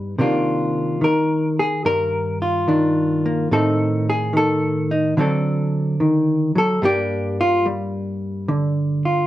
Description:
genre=solo jazz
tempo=72 BPM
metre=4/4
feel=swing 68% on 8ths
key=unclear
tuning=A4 = 440 Hz
part: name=hollow-body jazz guitar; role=solo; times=0.0-9.3 s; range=G2 to Bb4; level=-17 LUFS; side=equal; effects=none
room=moderate large studio reverb, RT60 0.9 s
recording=worn, warbling old tape, cassette tape, warbly pitch drift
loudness=-17 LUFS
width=side -14 dB against mid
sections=0.0-9.3 A section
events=hollow-body jazz guitar solo 0.0-9.3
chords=0.2 Cm11; 3.5 Adim; 5.2 D7; 6.8 Gm7

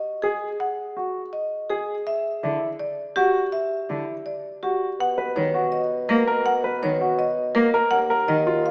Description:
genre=classical, minimalist pattern music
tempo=164 BPM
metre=4/4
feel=straight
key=unclear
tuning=A4 = 440 Hz
part: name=marimba with medium hard mallets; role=melody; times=0.0-8.7 s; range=G4 to F#5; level=-27 LUFS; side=equal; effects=none
part: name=clear baby grand piano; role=arpeggios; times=0.2-8.7 s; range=E4 to B4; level=-28 LUFS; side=equal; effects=none
part: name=rich cello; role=accompaniment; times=2.4-8.4 s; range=D3 to A#3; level=-28 LUFS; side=equal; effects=none
part: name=dark bassoon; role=bass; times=5.0-8.7 s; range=D#2 to B2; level=-30 LUFS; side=equal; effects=none
room=moderate recital hall reverb, RT60 1.7 s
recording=small speaker sound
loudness=-24 LUFS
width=mono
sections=0.0-5.0 A section; 5.0-8.7 B section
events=none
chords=0.0 G#5; 2.1 E7sus2; 5.0 Bmaj7(no3); 7.9 D#m

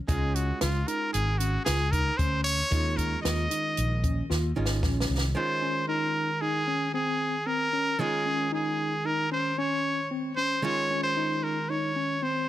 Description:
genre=progressive instrumental, band music in an uneven meter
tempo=114 BPM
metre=5/4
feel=straight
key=unclear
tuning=A4 = 440 Hz
part: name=archtop guitar, miked and amplified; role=accompaniment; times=0.0-12.5 s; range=Eb3 to F4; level=-34 LUFS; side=right 3 dB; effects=none
part: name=bright trumpet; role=melody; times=0.1-12.5 s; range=F4 to Eb5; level=-28 LUFS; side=equal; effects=digital delay
part: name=tine electric piano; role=arpeggios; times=0.1-12.5 s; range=C4 to F4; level=-33 LUFS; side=left 1 dB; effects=medium stereo tremolo
part: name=fretless electric bass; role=bass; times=0.1-5.3 s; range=Ab1 to Eb2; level=-28 LUFS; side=equal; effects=lush chorus
part: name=compact cocktail drum kit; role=drums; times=0.1-5.3 s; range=hi-hat, kick drum, snare drum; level=-30 LUFS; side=equal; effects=none
room=light reverb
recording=none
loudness=-25 LUFS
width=side -13 dB against mid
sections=0.0-5.4 A section; 5.4-12.5 B section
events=drum fill 4.3-5.4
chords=0.1 Db; 2.7 Eb5; 5.4 Dbmaj7

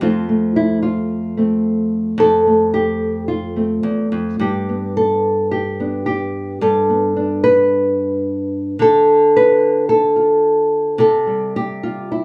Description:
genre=folk, solo fingerstyle acoustic guitar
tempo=109 BPM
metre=4/4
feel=rubato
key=unclear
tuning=A4 = 441 Hz
part: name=nylon-string guitar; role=solo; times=0.0-12.2 s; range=E2 to B4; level=-17 LUFS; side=equal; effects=none
room=moderate studio ambience, RT60 0.5 s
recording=studio ambience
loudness=-17 LUFS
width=mono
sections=0.0-12.2 A section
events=none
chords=0.0 F; 4.4 Gadd9; 8.8 Dm; 11.0 C5

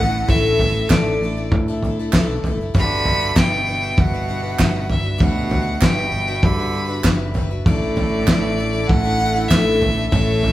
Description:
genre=indie folk with a building arrangement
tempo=98 BPM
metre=4/4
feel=straight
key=unclear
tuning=A4 = 441 Hz
part: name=clear fiddle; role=melody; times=0.0-10.5 s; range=D5 to B5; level=-23 LUFS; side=equal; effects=none
part: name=bright cello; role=second line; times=0.0-10.5 s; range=G2 to D3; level=-26 LUFS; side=right 4 dB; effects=none
part: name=picked plugged-in twelve-string acoustic guitar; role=accompaniment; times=0.0-10.5 s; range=A2 to B4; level=-25 LUFS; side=left 3 dB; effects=none
part: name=warm brass ensemble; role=sustained chords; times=0.0-10.5 s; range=C#3 to E4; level=-33 LUFS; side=right 1 dB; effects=none
part: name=fingered electric bass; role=bass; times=0.0-10.5 s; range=F#1 to A2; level=-24 LUFS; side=equal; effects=none
part: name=cloth-damped thuddy drum kit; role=drums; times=0.3-10.5 s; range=kick drum, snare drum, toms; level=-19 LUFS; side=equal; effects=none
part: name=group handclap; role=percussion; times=0.9-9.7 s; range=none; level=-28 LUFS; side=right 4 dB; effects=none
room=moderate large studio reverb, RT60 1.0 s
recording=band playing live in one room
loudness=-16 LUFS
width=side -14 dB against mid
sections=0.0-10.5 A section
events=none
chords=0.0 Dsus2/A; 2.7 Gmaj7; 7.7 Dsus2/A

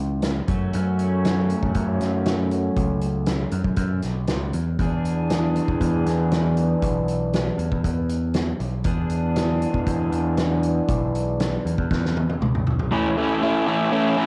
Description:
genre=indie rock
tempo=118 BPM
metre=4/4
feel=straight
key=unclear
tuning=A4 = 441 Hz
part: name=crunchy overdriven guitar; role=riff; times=0.0-14.3 s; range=A2 to G#4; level=-26 LUFS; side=equal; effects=cassette tape
part: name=growling picked electric bass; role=bass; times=0.0-12.9 s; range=B1 to F#2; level=-26 LUFS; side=equal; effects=overdrive
part: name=loose indie drum kit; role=drums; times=0.2-12.9 s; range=hi-hat, kick drum, snare drum, toms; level=-29 LUFS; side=equal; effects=cassette tape
room=light reverb, studio reverb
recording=home recording on cassette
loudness=-23 LUFS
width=mono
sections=0.0-12.9 A section; 12.9-14.3 B section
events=drum fill 11.9-12.9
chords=0.5 F#m; 4.8 E7; 12.9 A

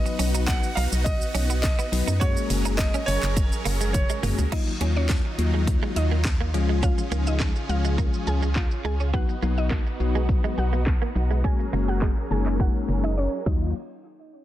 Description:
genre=dance-pop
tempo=104 BPM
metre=4/4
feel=straight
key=Eb minor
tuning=A4 = 443 Hz
part: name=bright concert grand piano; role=melody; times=0.0-4.3 s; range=Db5 to F#5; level=-30 LUFS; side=right 2 dB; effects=tape echo
part: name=bell-like tine electric piano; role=accompaniment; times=0.0-13.7 s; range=F3 to B4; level=-30 LUFS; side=left 9 dB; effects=sidechain pumping
part: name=supersaw chords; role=sustained chords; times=0.0-13.7 s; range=Db3 to Bb4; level=-33 LUFS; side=right 2 dB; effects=sidechain pumping
part: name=organ-like FM bass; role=bass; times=0.0-13.7 s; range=Gb1 to F#2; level=-24 LUFS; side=equal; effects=sidechain pumping
part: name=direct-recorded clean electric guitar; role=riff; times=0.1-13.6 s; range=Gb3 to Gb4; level=-34 LUFS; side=right 8 dB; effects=ensemble chorus
part: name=house drum kit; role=drums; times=0.1-13.6 s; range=crash cymbal, handclaps, hi-hat, kick drum, shaker, snare drum, toms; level=-25 LUFS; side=equal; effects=none
part: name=mallet-like synth pluck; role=melody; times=4.5-13.7 s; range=Db4 to Ab5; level=-34 LUFS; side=right 1 dB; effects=chorus, sidechain pumping, tape echo
room=little or no reverb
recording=dense, heavily limited modern master, low-pass filter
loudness=-21 LUFS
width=side -13 dB against mid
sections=0.0-4.5 A section; 4.5-13.8 B section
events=drum fill 3.9-4.5; filter sweep 4.5-13.8; silent gap 13.2-13.8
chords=0.0 B; 2.2 Gbadd9; 4.5 Ebmadd9; 6.5 Db; 9.1 B; 11.4 Gbadd9; 13.5 Ebmadd9; 13.8 N.C.

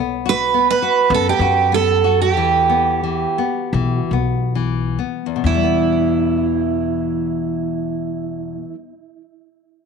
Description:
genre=fado-style ballad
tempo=64-109 BPM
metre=4/4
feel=rubato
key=E minor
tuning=A4 = 440 Hz
part: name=nylon-string guitar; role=accompaniment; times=0.0-8.9 s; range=E2 to F#4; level=-22 LUFS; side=left 14 dB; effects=none
part: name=upright bass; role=bass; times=0.0-8.7 s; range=B1 to F#2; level=-22 LUFS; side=left 2 dB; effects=none
part: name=picked twelve-string acoustic guitar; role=melody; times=0.3-8.7 s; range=E4 to B4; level=-18 LUFS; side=right 8 dB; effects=tape echo
room=moderate echo chamber reverb, RT60 1.4 s, small room ambience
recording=1960s-style stereo with parts hard left and right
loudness=-16 LUFS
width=side -6 dB against mid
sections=0.0-5.4 A section; 5.4-9.0 B section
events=slowing down 0.0-5.4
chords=0.0 B5; 2.4 Em

